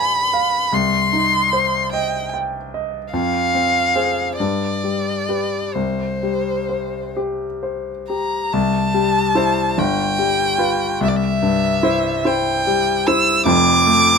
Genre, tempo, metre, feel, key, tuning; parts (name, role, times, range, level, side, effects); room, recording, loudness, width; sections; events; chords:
classical, romantic duo for violin and grand piano; 42-51 BPM (dotted quarters); 6/8; rubato; C minor, C major from 8.5 s; A4 = 442 Hz
warm violin; melody; 0.0-14.2 s; C5 to E6; -18 LUFS; equal
clear grand piano; accompaniment; 0.0-14.2 s; F1 to Ab5; -19 LUFS; left 2 dB
little or no reverb; close, detailed microphones; -16 LUFS; side -5 dB against mid
0.0-8.5 A section; 8.5-14.2 B section
0.0 G7b9; 0.7 Cm; 3.1 Fm; 4.4 G; 5.8 C5; 8.5 C; 9.8 G7; 11.0 C; 13.5 F